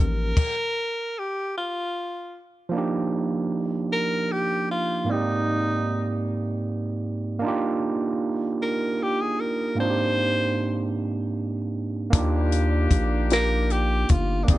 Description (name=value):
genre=slow six-eight R&B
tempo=51 BPM (dotted quarters)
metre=6/8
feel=straight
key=Eb major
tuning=A4 = 440 Hz
part: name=breathy tenor saxophone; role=melody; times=0.0-14.6 s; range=D4 to C5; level=-26 LUFS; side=left 1 dB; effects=none
part: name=overdriven tine electric piano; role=accompaniment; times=0.0-14.6 s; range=Ab2 to D5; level=-25 LUFS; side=right 3 dB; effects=none
part: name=rubbery square bass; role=bass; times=0.0-0.3, 12.1-14.6 s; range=G1 to Eb2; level=-24 LUFS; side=left 1 dB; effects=none
part: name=compact cocktail drum kit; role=drums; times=0.4-0.6, 12.1-14.6 s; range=crash cymbal, hi-hat, kick drum, snare drum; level=-20 LUFS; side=left 1 dB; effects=none
part: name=warm horn section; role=stabs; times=12.1-14.6 s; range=Ab3 to Ab4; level=-32 LUFS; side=left 5 dB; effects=none
room=little or no reverb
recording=nothing above 10.5 kHz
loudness=-22 LUFS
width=side -16 dB against mid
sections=0.0-2.7 A section; 2.7-14.6 B section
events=stop 0.4-2.7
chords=0.4 N.C.; 2.7 Ebmaj9; 5.1 Abmaj9#11; 7.4 Ebmaj9; 9.8 Abmaj9#11; 12.1 Ebmaj9